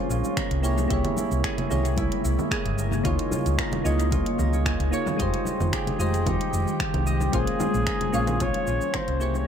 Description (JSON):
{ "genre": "sunset chillout", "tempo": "112 BPM", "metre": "4/4", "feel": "straight", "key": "unclear", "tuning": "A4 = 441 Hz", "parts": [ { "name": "soft electric-piano-like synth keys", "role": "accompaniment", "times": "0.0-9.5 s", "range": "Ab3 to Eb5", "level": "-29 LUFS", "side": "equal", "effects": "chorus, auto-pan, dub echo" }, { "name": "ethereal airy pad", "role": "sustained chords", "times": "0.0-9.5 s", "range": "Db3 to G5", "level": "-31 LUFS", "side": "left 1 dB", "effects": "ensemble chorus, built-in reverb, phaser" }, { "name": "concert harp", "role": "arpeggios", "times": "0.0-9.5 s", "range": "Eb4 to Ab5", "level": "-33 LUFS", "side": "equal", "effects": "dub echo" }, { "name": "hollow-body short-scale fingered electric bass", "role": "bass", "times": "0.1-9.4 s", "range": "F1 to Db2", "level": "-25 LUFS", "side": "equal", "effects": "none" }, { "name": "smooth R&B drum kit", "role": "drums", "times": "0.1-9.5 s", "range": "congas, finger snaps, hi-hat, shaker", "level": "-33 LUFS", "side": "right 3 dB", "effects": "dub echo" }, { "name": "congas and bongos", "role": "percussion", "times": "0.2-9.4 s", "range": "none", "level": "-35 LUFS", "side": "left 3 dB", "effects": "dub echo" }, { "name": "electronic kick drum", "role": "drums", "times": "0.4-9.1 s", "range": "none", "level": "-32 LUFS", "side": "equal", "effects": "overdrive" }, { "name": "mellow flugelhorn", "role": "melody", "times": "5.7-9.5 s", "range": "G4 to Db5", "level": "-29 LUFS", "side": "left 1 dB", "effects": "dub echo" } ], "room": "moderate spring reverb, RT60 1.8 s", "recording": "echo-heavy mix", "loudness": "-22 LUFS", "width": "side -8 dB against mid", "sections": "0.0-9.5 A section", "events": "fade-out 8.1-9.5", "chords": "0.0 Bbm9; 0.6 C7b9b13; 3.0 Db6; 5.2 Fm9; 7.3 Bbm9" }